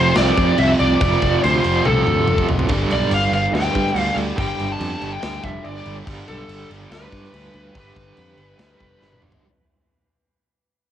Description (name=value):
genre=hard rock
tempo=142 BPM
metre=4/4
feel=straight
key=G mixolydian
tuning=A4 = 441 Hz
part: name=high-gain lead guitar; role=melody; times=0.0-9.2 s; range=A4 to A5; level=-21 LUFS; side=left 1 dB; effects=distortion, cassette tape, analog delay
part: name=biting overdriven guitar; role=riff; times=0.0-9.5 s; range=F2 to G3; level=-22 LUFS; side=right 5 dB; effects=tremolo, cassette tape
part: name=heavy high-gain guitar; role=riff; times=0.0-9.5 s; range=F2 to G3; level=-29 LUFS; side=left 10 dB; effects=distortion, cassette tape
part: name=modern bright picked electric bass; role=bass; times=0.0-9.4 s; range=F1 to G2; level=-24 LUFS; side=left 1 dB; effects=none
part: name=big rock drum kit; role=drums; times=0.2-9.4 s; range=crash cymbal, kick drum, snare drum, toms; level=-24 LUFS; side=equal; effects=cassette tape
room=light reverb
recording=home recording on cassette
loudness=-16 LUFS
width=side -10 dB against mid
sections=0.0-9.4 A section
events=fade-out 0.0-9.4; drum fill 1.9-2.7, 9.0-9.4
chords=0.0 F; 2.7 G